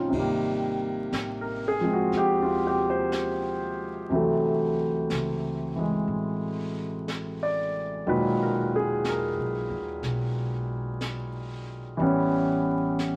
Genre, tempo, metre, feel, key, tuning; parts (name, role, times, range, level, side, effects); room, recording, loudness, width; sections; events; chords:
jazz ballad; 61 BPM; 4/4; swing 69% on 8ths; A4 = 439 Hz
warm grand piano; accompaniment; 0.0-13.2 s; A#2 to G5; -28 LUFS; equal
upright bass; bass; 0.0-13.2 s; E1 to Eb2; -38 LUFS; equal
jazz brush drum kit; drums; 0.1-13.2 s; brushed snare drum, hi-hat, kick drum, ride cymbal, snare drum; -42 LUFS; equal
moderate studio reverb, RT60 0.8 s; vinyl crackle; -27 LUFS; mono
0.1-13.2 A section
0.1 Abmaj9; 4.1 D9; 8.1 Emaj9#11; 12.0 A9